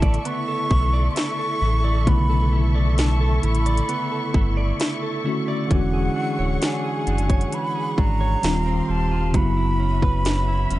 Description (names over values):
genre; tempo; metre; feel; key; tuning
contemporary R&B; 66 BPM; 4/4; straight; B minor; A4 = 440 Hz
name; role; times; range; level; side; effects
breathy concert flute; melody; 0.0-10.8 s; F#5 to C#6; -27 LUFS; right 1 dB; digital delay
mellow tine electric piano; accompaniment; 0.0-10.8 s; C#3 to F#4; -26 LUFS; left 1 dB; medium stereo tremolo
muted studio string section; sustained chords; 0.0-10.8 s; E4 to C#6; -32 LUFS; left 2 dB; sidechain pumping
direct-recorded clean electric guitar; arpeggios; 0.0-10.8 s; D#3 to D5; -30 LUFS; right 6 dB; spring reverb
sub bass with octave; bass; 0.0-10.8 s; D1 to B1; -21 LUFS; equal; none
trap drum kit; drums; 0.0-10.8 s; hi-hat, kick drum, snare drum; -21 LUFS; equal; none
room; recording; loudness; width
little or no reverb; dark, warm production, nothing above 10.5 kHz; -19 LUFS; side -16 dB against mid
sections
0.0-10.8 A section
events
none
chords
0.0 Bm11; 5.7 E13; 8.4 D#69; 9.3 F#7sus4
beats
0.25 1.16 | 2.07 2.98 3.89 4.80 | 5.71 6.62 7.52 8.43 | 9.34 10.25